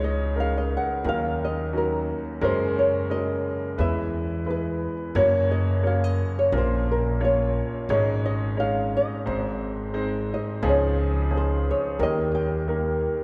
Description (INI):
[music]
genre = folk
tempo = 88 BPM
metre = 4/4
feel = straight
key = unclear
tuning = A4 = 444 Hz
[part]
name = flamenco guitar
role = melody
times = 0.0-13.0 s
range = Bb4 to G5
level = -29 LUFS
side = equal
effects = none
[part]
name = warm concert grand piano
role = accompaniment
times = 0.0-13.2 s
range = Gb1 to Db5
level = -28 LUFS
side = equal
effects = none
[part]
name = upright bass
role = bass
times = 0.0-13.1 s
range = Ab1 to Gb2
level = -30 LUFS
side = equal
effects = none
[sound]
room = wet church reverb, RT60 3.2 s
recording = recorded in a church or concert hall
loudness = -25 LUFS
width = mono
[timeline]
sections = 0.0-13.2 A section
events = none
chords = 0.0 Dbsus2; 1.1 Ebm7; 2.4 Gbadd9; 3.8 E; 5.2 Gb; 6.5 Bbm; 7.9 Absus4; 9.3 Ab; 10.6 Dbadd9; 12.0 Eb